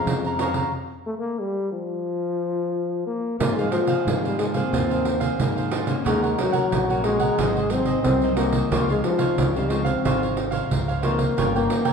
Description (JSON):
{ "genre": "samba and choro", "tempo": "90 BPM", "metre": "4/4", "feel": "straight", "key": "Ab major from 3.4 s", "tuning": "A4 = 440 Hz", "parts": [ { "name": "warm trombone", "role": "melody", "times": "0.0-11.9 s", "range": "F3 to C4", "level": "-24 LUFS", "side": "left 2 dB", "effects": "none" }, { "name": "cavaquinho", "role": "accompaniment", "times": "0.0-11.9 s", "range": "Eb4 to Bb5", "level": "-28 LUFS", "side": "right 3 dB", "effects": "none" }, { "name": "nylon-string guitar", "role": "accompaniment", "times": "0.0-11.9 s", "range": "G2 to C5", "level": "-31 LUFS", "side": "left 4 dB", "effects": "none" }, { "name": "growling fingered electric bass", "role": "bass", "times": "0.1-11.7 s", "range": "G1 to Ab2", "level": "-28 LUFS", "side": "equal", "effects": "overdrive" }, { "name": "pandeiro", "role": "percussion", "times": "0.1-11.9 s", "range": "none", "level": "-26 LUFS", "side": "right 4 dB", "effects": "none" } ], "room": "wet large studio reverb, RT60 1.3 s", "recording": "heard from further back in the room", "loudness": "-20 LUFS", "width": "side -6 dB against mid", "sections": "0.0-3.4 A section; 3.4-11.9 B section", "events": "stop 0.7-3.4", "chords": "0.0 Bbm9; 0.7 N.C.; 3.4 Ab69; 6.1 Ebm7; 7.4 Ab7; 8.7 Dbmaj9; 11.4 Gm7b5" }